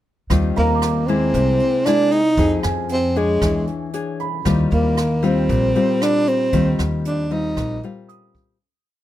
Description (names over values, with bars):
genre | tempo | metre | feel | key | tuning
bossa nova | 116 BPM | 4/4 | straight | Eb major | A4 = 440 Hz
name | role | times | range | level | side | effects
nylon-string guitar | accompaniment | 0.3-8.6 s | Bb2 to Db5 | -23 LUFS | left 5 dB | none
upright bass | bass | 0.3-7.8 s | Bb1 to F2 | -21 LUFS | right 1 dB | none
jazz brush drum kit | drums | 0.3-8.5 s | hi-hat, kick drum, rim click | -27 LUFS | right 1 dB | none
breathy tenor saxophone | melody | 0.6-7.8 s | Ab3 to Eb4 | -18 LUFS | right 1 dB | none
dark baby grand piano | accompaniment | 0.6-8.8 s | Ab5 to Eb6 | -29 LUFS | right 7 dB | none
room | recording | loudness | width
little or no reverb | close, detailed microphones | -16 LUFS | side -13 dB against mid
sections
0.3-8.6 A section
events
fade-out 6.5-8.6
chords
0.3 Eb69; 1.3 C7b13; 2.4 Fm7; 3.4 E6; 4.5 Eb69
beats
| 0.30 0.82 1.34 1.86 | 2.38 2.90 3.42 3.94 | 4.46 4.97 5.50 6.01 | 6.53 7.05 7.57 8.09